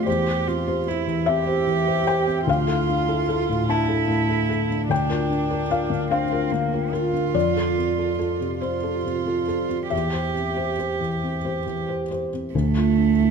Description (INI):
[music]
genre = neoclassical piano and strings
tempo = 44-50 BPM (dotted quarters)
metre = 6/8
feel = rubato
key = unclear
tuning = A4 = 440 Hz
[part]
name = warm cello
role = second line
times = 0.0-13.3 s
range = A3 to G4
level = -24 LUFS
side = right 10 dB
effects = none
[part]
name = felt-muted upright piano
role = accompaniment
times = 0.0-13.3 s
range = D2 to A5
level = -22 LUFS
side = left 3 dB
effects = none
[part]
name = pure sine sub bass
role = bass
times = 12.5-13.3 s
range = D2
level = -26 LUFS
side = right 2 dB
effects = none
[sound]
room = moderate recital hall reverb, RT60 1.6 s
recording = none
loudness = -20 LUFS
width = side -6 dB against mid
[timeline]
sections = 0.0-12.5 A section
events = none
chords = 0.1 C/E; 2.5 Dmadd9; 4.9 Bb/D; 7.3 F; 9.9 C/E; 12.5 Dmadd9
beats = | 0.07 1.27 | 2.48 3.70 | 4.91 6.12 | 7.35 8.62 | 9.92 11.23 | 12.53